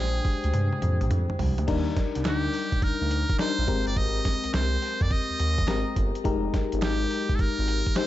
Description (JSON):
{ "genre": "R&B, new jack swing", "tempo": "105 BPM", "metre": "4/4", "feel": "swing 66% on 16ths", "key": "Eb major", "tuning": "A4 = 440 Hz", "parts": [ { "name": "trumpet with metal mute", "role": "melody", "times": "0.0-8.1 s", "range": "G4 to Eb5", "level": "-31 LUFS", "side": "right 1 dB", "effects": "tape echo" }, { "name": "FM electric piano", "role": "accompaniment", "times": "0.0-8.1 s", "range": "G3 to G5", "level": "-30 LUFS", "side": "left 5 dB", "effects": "chorus" }, { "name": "smooth synth bass", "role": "bass", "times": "0.0-7.8 s", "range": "F1 to G2", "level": "-27 LUFS", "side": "right 1 dB", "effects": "none" }, { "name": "dusty soul sampler-style drum kit", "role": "drums", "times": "0.2-8.1 s", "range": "crash cymbal, hi-hat, kick drum, snare drum, toms", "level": "-28 LUFS", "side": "right 1 dB", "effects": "none" }, { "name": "group handclap", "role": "percussion", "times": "2.3-8.1 s", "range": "none", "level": "-45 LUFS", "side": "right 9 dB", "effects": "none" } ], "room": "light reverb", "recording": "dark, warm production, nothing above 7.8 kHz", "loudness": "-23 LUFS", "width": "side -14 dB against mid", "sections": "0.0-1.7 A section; 1.7-8.1 B section", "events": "drum fill 0.5-1.7", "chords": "0.0 Bb13; 1.7 Ebmaj7; 3.7 Abmaj9; 6.2 Fm11" }